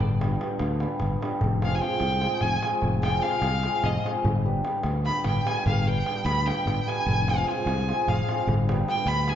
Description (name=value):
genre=balkan folk, Balkan wedding band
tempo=298 BPM (eighths)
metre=7/8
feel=straight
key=unclear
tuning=A4 = 441 Hz
part: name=cimbalom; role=accompaniment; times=0.0-9.3 s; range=G3 to Ab4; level=-28 LUFS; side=equal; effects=none
part: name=sustaining fretless electric bass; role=bass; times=0.0-9.3 s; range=F1 to D2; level=-28 LUFS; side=equal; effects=none
part: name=darbuka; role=percussion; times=0.0-9.3 s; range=none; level=-29 LUFS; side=left 1 dB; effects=none
part: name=bright violin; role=second line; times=1.6-9.3 s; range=Eb5 to B5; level=-29 LUFS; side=right 2 dB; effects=none
room=moderate concert hall reverb, RT60 1.9 s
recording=dark, warm production, nothing above 7.5 kHz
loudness=-23 LUFS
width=side -10 dB against mid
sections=0.0-9.3 A section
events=violin solo 0.0-9.3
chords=0.0 G; 1.4 Fm; 4.3 G; 7.1 Fm; 8.5 G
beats=| 0.01 0.21 0.42 0.62 0.82 1.03 1.23 | 1.43 1.63 1.83 2.04 2.24 2.44 2.64 | 2.85 3.05 3.25 3.45 3.65 3.86 4.06 | 4.26 4.46 4.66 4.87 5.07 5.27 5.47 | 5.67 5.87 6.07 6.28 6.48 6.68 6.88 | 7.08 7.28 7.48 7.68 7.88 8.09 8.29 | 8.49 8.69 8.89 9.09 9.29